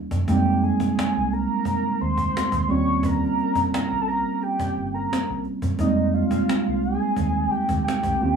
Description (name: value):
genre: R&B, neo-soul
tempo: 87 BPM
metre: 4/4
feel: swing 53% on 16ths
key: F minor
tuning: A4 = 440 Hz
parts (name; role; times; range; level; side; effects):
- overdriven tine electric piano; accompaniment; 0.0-8.4 s; G3 to G4; -23 LUFS; right 3 dB; none
- deep dub fingered electric bass; bass; 0.1-8.4 s; G1 to Gb2; -26 LUFS; equal; none
- cajon; drums; 0.1-8.3 s; none; -29 LUFS; equal; none
- warm velvety synth lead; melody; 0.3-8.4 s; Eb5 to Db6; -26 LUFS; equal; chorus, tremolo
room: wet studio ambience, RT60 0.5 s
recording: band playing live in one room, small room ambience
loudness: -20 LUFS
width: side -6 dB against mid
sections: 0.0-8.4 A section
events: none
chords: 0.3 Fm9; 2.7 Eb9; 5.8 Fm9